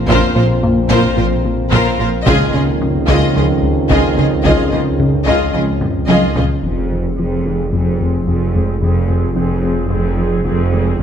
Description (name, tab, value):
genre	cinematic, hybrid orchestral and electronic film score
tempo	110 BPM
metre	4/4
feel	straight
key	F minor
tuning	A4 = 440 Hz
part	mellow French horn section	sustained chords	0.0-11.0 s	Ab3 to Db4	-24 LUFS	left 5 dB	low-pass filter
part	warm trombone section	sustained chords	0.0-6.3 s	F2 to F3	-22 LUFS	right 5 dB	low-pass filter
part	dark detuned saw bass	bass	0.0-11.0 s	F1 to Db2	-21 LUFS	equal	none
part	warm symphonic violin section	melody	0.1-6.4 s	C5 to Eb5	-21 LUFS	left 4 dB	low-pass filter
part	rich symphonic violin section	second line	0.1-6.4 s	Ab4 to Bb4	-23 LUFS	left 3 dB	none
part	rich symphonic viola section	accompaniment	0.1-11.0 s	C4 to Ab4	-22 LUFS	equal	low-pass filter
part	thumb-piano-like synth pluck	arpeggios	0.1-11.0 s	Db3 to C5	-26 LUFS	right 1 dB	none
part	plucky analog bass	riff	0.1-11.0 s	Db2 to Bb3	-20 LUFS	left 2 dB	low-pass filter
part	clear symphonic cello section	bass	0.1-11.0 s	F2 to Db3	-22 LUFS	right 3 dB	none
part	rich symphonic double bass section	bass	0.1-11.0 s	F1 to Db2	-22 LUFS	right 4 dB	none
part	taiko ensemble	drums	0.1-7.7, 11.0 s	none	-21 LUFS	equal	none
room	wet recital hall reverb, RT60 1.6 s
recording	none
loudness	-12 LUFS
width	side -8 dB against mid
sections	0.0-6.6 A section; 6.6-11.0 B section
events	drum fill 5.8-6.6; filter sweep 6.6-11.0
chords	0.0 Bbsus2; 2.3 Dbadd9; 6.6 Fm